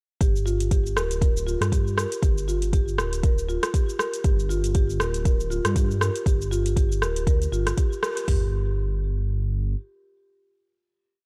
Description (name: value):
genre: afro house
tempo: 119 BPM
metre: 4/4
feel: swing 56% on 16ths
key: G minor pentatonic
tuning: A4 = 441 Hz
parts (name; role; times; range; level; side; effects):
- marimba with soft mallets; arpeggios; 0.2-8.5 s; F4 to Bb4; -32 LUFS; equal; vintage 12-bit sampler grit, sidechain pumping, tape echo
- dark detuned saw bass; bass; 0.2-9.8 s; D1 to G2; -28 LUFS; equal; sidechain pumping
- afro-pop drum kit; drums; 0.2-8.4 s; hi-hat, kick drum, toms; -24 LUFS; equal; none
- afro-pop drum kit; drums; 0.2-8.3 s; hi-hat, rim click, shaker; -32 LUFS; equal; none
room: digital ambience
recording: dry, gritty hardware recording, cassette tape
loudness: -24 LUFS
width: mono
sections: 0.2-8.3 groove; 8.3-11.3 final note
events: band accent 8.0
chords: 0.2 Gm7; 8.3 N.C.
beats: | 0.21 0.72 1.22 1.72 | 2.23 2.73 3.24 3.74 | 4.25 4.75 5.25 5.76 | 6.26 6.77 7.27 7.78 | 8.28 8.78 9.29